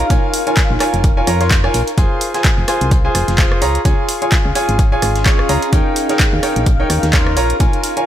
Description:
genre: piano house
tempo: 128 BPM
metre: 4/4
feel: swing 57% on 16ths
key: unclear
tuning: A4 = 440 Hz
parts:
  - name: bright concert grand piano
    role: riff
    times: 0.0-8.1 s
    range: Eb4 to Db6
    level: -18 LUFS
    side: equal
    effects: sidechain pumping, ping-pong delay
  - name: solid FM bass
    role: bass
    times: 0.0-7.7 s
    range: F1 to F2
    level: -18 LUFS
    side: equal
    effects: sidechain pumping
  - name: punchy analog drum machine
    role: drums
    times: 0.0-8.1 s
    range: handclaps, hi-hat, rim click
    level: -20 LUFS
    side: equal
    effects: none
  - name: granular cloud pad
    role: texture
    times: 0.0-8.1 s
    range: Db4 to Db6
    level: -24 LUFS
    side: equal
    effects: built-in reverb, sidechain pumping
  - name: breakbeat sampler-style drum kit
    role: drums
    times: 0.1-8.0 s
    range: hi-hat, snare drum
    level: -30 LUFS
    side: equal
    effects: none
  - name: electronic kick drum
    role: drums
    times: 0.1-7.7 s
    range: none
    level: -14 LUFS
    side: equal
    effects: none
room: light reverb, digital ambience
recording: none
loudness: -12 LUFS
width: side -11 dB against mid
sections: 0.0-8.1 A section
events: none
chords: 0.0 Bbm7; 2.0 Fm; 3.6 Db; 5.7 Eb7; 7.4 Bbm7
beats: | 0.10 0.57 1.04 1.51 | 1.98 2.44 2.91 3.38 | 3.85 4.32 4.79 5.26 | 5.73 6.20 6.66 7.13 | 7.60

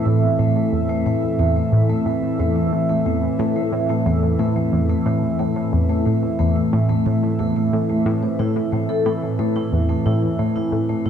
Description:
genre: ambient, sequencer-driven space music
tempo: 90 BPM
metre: 4/4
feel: straight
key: A minor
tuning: A4 = 441 Hz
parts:
  - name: sweeping resonant pad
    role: sustained chords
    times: 0.0-11.1 s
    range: A2 to E5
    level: -21 LUFS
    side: equal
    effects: chorus, phaser
  - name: vibraphone with medium mallets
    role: arpeggios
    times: 0.0-11.1 s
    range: A3 to C5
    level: -24 LUFS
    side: moving between left 7 dB and equal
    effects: auto-pan, analog delay
  - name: tight sequenced synth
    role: riff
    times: 0.1-11.1 s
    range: E2 to A2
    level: -21 LUFS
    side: right 1 dB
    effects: chorus, phaser, analog delay
room: wet echo chamber reverb, RT60 2.1 s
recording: echo-heavy mix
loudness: -17 LUFS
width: side -8 dB against mid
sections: 0.0-11.1 A section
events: none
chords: 0.0 Am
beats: 0.39 | 1.06 1.73 2.39 3.06 | 3.73 4.39 5.06 5.73 | 6.39 7.06 7.73 8.39 | 9.06 9.73 10.39 11.06

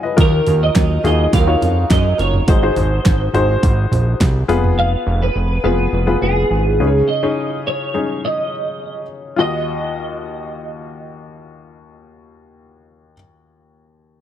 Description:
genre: piano-driven pop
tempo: 104 BPM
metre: 4/4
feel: straight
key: Eb minor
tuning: A4 = 440 Hz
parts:
  - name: warm upright piano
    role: accompaniment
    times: 0.0-14.2 s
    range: Eb2 to Ab5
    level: -21 LUFS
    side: left 4 dB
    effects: none
  - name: twelve-string electric guitar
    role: melody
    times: 0.2-13.2 s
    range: Ab4 to F5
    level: -21 LUFS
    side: right 2 dB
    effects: ensemble chorus
  - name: fingerpicked steel-string acoustic guitar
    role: riff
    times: 0.2-2.5 s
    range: Eb3 to Bb4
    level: -23 LUFS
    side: right 7 dB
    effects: none
  - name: fat analog bass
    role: bass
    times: 0.2-7.0 s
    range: F1 to Gb2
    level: -17 LUFS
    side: equal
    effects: none
  - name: pop drum kit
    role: drums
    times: 0.2-4.8 s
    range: hi-hat, kick drum, snare drum, toms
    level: -17 LUFS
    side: right 1 dB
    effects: none
room: digital ambience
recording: dry, close 1970s-style studio recording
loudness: -14 LUFS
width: side -10 dB against mid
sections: 0.0-9.4 A section; 9.4-11.7 B section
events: upright piano fill 0.0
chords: 0.2 Ebmadd9; 2.5 Ab7; 4.5 Fdim; 6.8 Dbsus2; 9.4 Ebmadd9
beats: | 0.17 0.75 1.33 1.90 | 2.48 3.05 3.63 4.20 | 4.78 5.35 5.93 6.51 | 7.08 7.66 8.23 8.81 | 9.38 9.96 10.54 11.11

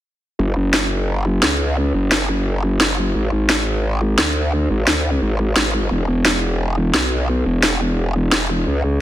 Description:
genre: dark technical drum and bass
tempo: 174 BPM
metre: 4/4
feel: straight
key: unclear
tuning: A4 = 445 Hz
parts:
  - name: growl bass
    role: bass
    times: 0.4-9.0 s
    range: E1 to D2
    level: -18 LUFS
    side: equal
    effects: chorus, overdrive
  - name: electronic snare drum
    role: drums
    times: 0.7-8.4 s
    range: none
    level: -19 LUFS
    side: equal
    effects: overdrive
room: light reverb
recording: dense, heavily limited modern master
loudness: -16 LUFS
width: side -13 dB against mid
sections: 0.4-9.0 A section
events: none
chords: none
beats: | 0.39 0.73 1.08 1.43 | 1.77 2.12 2.46 2.80 | 3.15 3.49 3.84 4.18 | 4.53 4.87 5.22 5.56 | 5.91 6.25 6.60 6.94 | 7.29 7.63 7.98 8.32 | 8.67 9.01

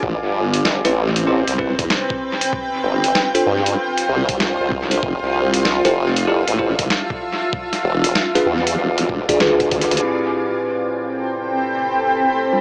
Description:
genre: glitch hop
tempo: 96 BPM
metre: 4/4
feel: swing 64% on 16ths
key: A minor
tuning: A4 = 445 Hz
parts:
  - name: formant-sweep wobble bass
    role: bass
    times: 0.0-10.0 s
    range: E1 to G2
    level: -19 LUFS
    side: equal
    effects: chorus
  - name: electronic kick drum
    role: drums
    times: 0.0-9.9 s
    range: none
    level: -28 LUFS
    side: equal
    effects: small room ambience
  - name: granular cloud pad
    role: texture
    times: 0.0-12.6 s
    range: C4 to B5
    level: -21 LUFS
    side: equal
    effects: built-in reverb, sidechain pumping
  - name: boom bap sampler-style drum kit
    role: drums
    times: 0.5-10.2 s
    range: crash cymbal, hi-hat, snare drum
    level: -22 LUFS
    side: equal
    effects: low-pass filter on hats, small room ambience, low-pass filter on snare, low-pass filter on cymbals, dub echo
  - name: bell-like tine electric piano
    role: stabs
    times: 0.8-12.6 s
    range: A2 to D5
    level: -21 LUFS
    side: equal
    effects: phaser, sidechain pumping, low-pass filter, dub echo
room: wet spring reverb, RT60 1.5 s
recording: echo-heavy mix, small speaker sound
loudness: -16 LUFS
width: side -32 dB against mid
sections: 0.0-10.0 A section; 10.0-12.6 B section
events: filter sweep on tine electric piano 0.0-10.0, 10.0-12.6; band accent 9.4-9.7; drum fill 9.7-10.0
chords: 0.0 Am9; 2.5 G7sus4; 5.0 Fmaj7; 7.5 E7b9; 10.0 Am9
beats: | 0.03 0.66 1.28 1.91 | 2.53 3.15 3.78 4.41 | 5.03 5.66 6.28 6.91 | 7.53 8.15 8.78 9.40 | 10.03 10.65 11.28 11.90 | 12.53

